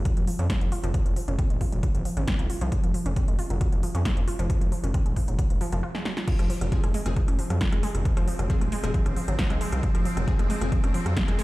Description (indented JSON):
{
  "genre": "driving peak-time techno",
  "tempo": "135 BPM",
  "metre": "4/4",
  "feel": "straight",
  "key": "F phrygian",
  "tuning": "A4 = 439 Hz",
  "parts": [
    { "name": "gritty driven synth bass", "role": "bass", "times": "0.0-11.4 s", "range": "Eb1 to F2", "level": "-27 LUFS", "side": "equal", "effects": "sidechain pumping" },
    { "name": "wide unison pluck", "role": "riff", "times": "0.1-11.4 s", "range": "Eb3 to F4", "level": "-32 LUFS", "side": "right 1 dB", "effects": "tube saturation, sidechain pumping, tape echo" },
    { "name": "electronic kick drum", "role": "drums", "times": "0.1-11.3 s", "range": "none", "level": "-25 LUFS", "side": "equal", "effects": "studio reverb" },
    { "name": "techno drum kit", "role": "drums", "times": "0.1-11.4 s", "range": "crash cymbal, hi-hat, rim click, snare drum", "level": "-35 LUFS", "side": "equal", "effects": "studio reverb" },
    { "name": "swarming drone", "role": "drone", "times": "7.0-11.4 s", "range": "F3 to C4", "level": "-37 LUFS", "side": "equal", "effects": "built-in reverb, sidechain pumping" },
    { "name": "rave stab", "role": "stabs", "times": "6.7-10.7 s", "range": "F3 to Ab4", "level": "-37 LUFS", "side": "left 3 dB", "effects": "chorus, built-in reverb, sidechain pumping, tape echo" }
  ],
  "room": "little or no reverb",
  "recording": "played on a big sound system in a bare room, large studio reverb",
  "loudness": "-23 LUFS",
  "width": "side -19 dB against mid",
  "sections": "0.0-6.3 A section; 6.3-11.4 B section",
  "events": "break 5.8-6.3; drum fill 5.9-6.3; drop 6.3-11.4",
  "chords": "0.0 N.C.; 6.3 Fm"
}